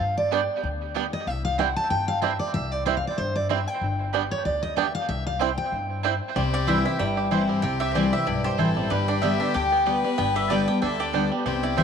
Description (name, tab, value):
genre	bluegrass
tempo	188 BPM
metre	4/4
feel	swing 56% on 8ths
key	C major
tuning	A4 = 440 Hz
part	picked steel-string acoustic guitar	accompaniment	0.0-11.8 s	G2 to A5	-26 LUFS	left 2 dB	none
part	upright bass	bass	0.0-11.8 s	G1 to G2	-31 LUFS	left 2 dB	none
part	bluegrass banjo	arpeggios	0.3-11.8 s	G3 to G4	-30 LUFS	right 9 dB	none
part	mandolin	stabs	0.3-11.8 s	B3 to G5	-31 LUFS	right 10 dB	tape echo
part	mandolin	melody	6.4-11.8 s	B4 to G5	-27 LUFS	left 1 dB	none
part	clear fiddle	second line	6.4-11.8 s	E4 to B4	-31 LUFS	left 12 dB	tape echo
room	moderate plate reverb, RT60 3.4 s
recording	1960s-style stereo with parts hard left and right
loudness	-22 LUFS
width	side -7 dB against mid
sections	0.0-6.4 A section; 6.4-11.8 B section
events	steel-string acoustic guitar solo 0.0-6.4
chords	0.0 G; 1.3 C; 3.8 G; 5.1 C; 8.9 G